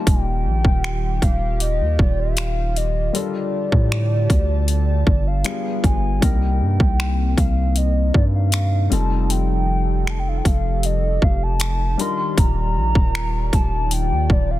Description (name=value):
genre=contemporary R&B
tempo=78 BPM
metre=4/4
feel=straight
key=unclear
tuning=A4 = 435 Hz
part: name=hollow clarinet-like synth lead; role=melody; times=0.0-14.6 s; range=D5 to C6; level=-26 LUFS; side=equal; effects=chorus, digital delay
part: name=warm grand piano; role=accompaniment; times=0.0-14.6 s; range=G3 to Bb4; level=-29 LUFS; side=left 7 dB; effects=none
part: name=chorused pulse-width pad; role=sustained chords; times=0.0-14.6 s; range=C3 to A5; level=-29 LUFS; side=equal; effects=none
part: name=long sustained 808-style bass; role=bass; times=0.1-14.6 s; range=Eb1 to A2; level=-20 LUFS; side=equal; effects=none
part: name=trap drum kit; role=drums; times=0.1-14.5 s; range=finger snaps, hi-hat, kick drum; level=-18 LUFS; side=equal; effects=overdrive, soft clipping on snare
room=digital ambience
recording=dense, heavily limited modern master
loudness=-17 LUFS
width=side -15 dB against mid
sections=0.0-14.6 A section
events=none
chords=0.0 Ebadd9; 3.1 Gm9; 5.5 G7b9; 6.2 Cm7; 8.9 F9; 12.0 Ebmaj9